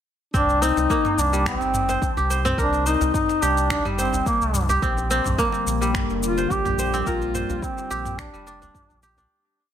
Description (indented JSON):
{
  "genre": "organic downtempo",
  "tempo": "107 BPM",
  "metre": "4/4",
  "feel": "straight",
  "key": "unclear",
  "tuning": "A4 = 439 Hz",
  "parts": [
    { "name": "warm duduk", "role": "melody", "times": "0.3-9.0 s", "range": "Bb3 to G4", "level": "-24 LUFS", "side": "left 1 dB", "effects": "tape echo" },
    { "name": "kora", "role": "arpeggios", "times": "0.3-9.7 s", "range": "G3 to C5", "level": "-26 LUFS", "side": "right 1 dB", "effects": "tape echo" },
    { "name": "warm sub bass", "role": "bass", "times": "0.3-9.3 s", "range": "F1 to C2", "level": "-26 LUFS", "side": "equal", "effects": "tube saturation, sidechain pumping" },
    { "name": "afro-pop drum kit", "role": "drums", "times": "0.3-9.3 s", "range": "finger snaps, shaker, toms", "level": "-30 LUFS", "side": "equal", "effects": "none" },
    { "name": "electronic kick drum", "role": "drums", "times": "0.3-8.9 s", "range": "none", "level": "-28 LUFS", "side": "equal", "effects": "none" },
    { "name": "djembe", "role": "percussion", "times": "0.5-9.3 s", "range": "none", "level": "-34 LUFS", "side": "left 1 dB", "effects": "none" },
    { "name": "warbly tape-like pad", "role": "sustained chords", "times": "5.2-9.3 s", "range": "D3 to Bb3", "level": "-29 LUFS", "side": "left 3 dB", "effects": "chorus, built-in reverb, phaser, sidechain pumping" }
  ],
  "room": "light reverb, studio reverb",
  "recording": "none",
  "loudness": "-20 LUFS",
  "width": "side -9 dB against mid",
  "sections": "0.3-9.3 groove",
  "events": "fade-out 6.3-9.3",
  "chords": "0.3 Cm7; 4.8 Bb6",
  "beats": "| 0.34 0.90 1.46 2.02 | 2.58 3.14 3.70 4.26 | 4.83 5.38 5.95 6.51 | 7.07 7.63 8.19 8.75"
}